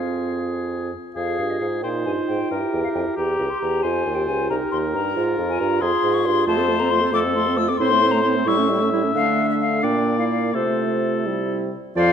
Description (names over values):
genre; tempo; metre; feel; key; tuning
quick classical-period movement for wind quintet; 83-92 BPM (dotted quarters); 6/8; rubato; F minor, F major from 6.5 s; A4 = 440 Hz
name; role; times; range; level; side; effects
hollow concert flute; melody; 0.0-12.1 s; C5 to E6; -25 LUFS; left 8 dB; none
warm oboe; second line; 0.0-12.1 s; G4 to E5; -27 LUFS; left 3 dB; none
mellow French horn; accompaniment; 0.0-12.1 s; F3 to G4; -25 LUFS; equal; none
warm clarinet; accompaniment; 0.0-12.1 s; C4 to D5; -26 LUFS; right 8 dB; none
mellow bassoon; bass; 0.0-12.1 s; C2 to D3; -26 LUFS; right 2 dB; none
room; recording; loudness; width
moderate scoring stage reverb, RT60 1.9 s; dark, warm production; -19 LUFS; side -7 dB against mid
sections
0.0-1.2 A section; 1.2-12.0 A section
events
none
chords
0.0 Fm; 2.5 C#dim7 (rootless); 3.8 F5; 5.2 Fm; 6.5 F; 7.8 Am; 8.5 A7; 9.1 Dm; 9.8 Bb; 10.5 F/C; 11.3 C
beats
0.47 | 1.16 1.84 | 2.51 3.17 | 3.84 4.50 | 5.16 5.81 | 6.46 7.12 | 7.79 8.46 | 9.15 9.83 | 10.54 11.25 | 11.96